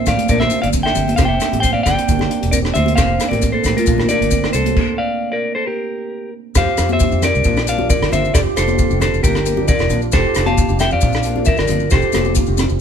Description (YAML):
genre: highlife guitar band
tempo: 134 BPM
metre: 4/4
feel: straight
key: F major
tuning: A4 = 440 Hz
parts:
  - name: clean electric guitar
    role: melody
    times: 0.0-12.3 s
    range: F4 to A5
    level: -19 LUFS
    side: left 2 dB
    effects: none
  - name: handpan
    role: arpeggios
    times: 0.0-12.8 s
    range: A3 to G4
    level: -22 LUFS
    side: right 8 dB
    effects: none
  - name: fingerpicked acoustic archtop guitar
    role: accompaniment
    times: 0.1-12.6 s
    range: F3 to G4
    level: -28 LUFS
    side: left 6 dB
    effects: none
  - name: fingered electric bass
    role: bass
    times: 0.1-12.8 s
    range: E1 to F2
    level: -20 LUFS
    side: equal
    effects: none
  - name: compact cocktail drum kit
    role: drums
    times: 0.1-12.7 s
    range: crash cymbal, hi-hat, kick drum, rim click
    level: -19 LUFS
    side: equal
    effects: none
  - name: congas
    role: percussion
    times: 0.1-12.7 s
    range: none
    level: -26 LUFS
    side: left 6 dB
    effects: none
  - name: maracas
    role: percussion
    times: 0.1-12.7 s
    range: none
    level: -28 LUFS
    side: left 8 dB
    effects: none
room: moderate stone room reverb, RT60 0.9 s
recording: band playing live in one room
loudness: -14 LUFS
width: side -8 dB against mid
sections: 0.0-6.6 A section; 6.6-12.8 B section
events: stop 4.8-6.6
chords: 0.3 Bb; 1.2 Fadd9; 2.1 Gm; 3.0 Fadd9; 3.9 Bb; 4.8 Bbmaj9/A; 5.7 N.C.; 6.6 Fadd9; 7.5 Bb; 8.3 Fadd9; 9.2 Gm; 10.1 Fadd9; 11.0 Bb; 11.9 Fadd9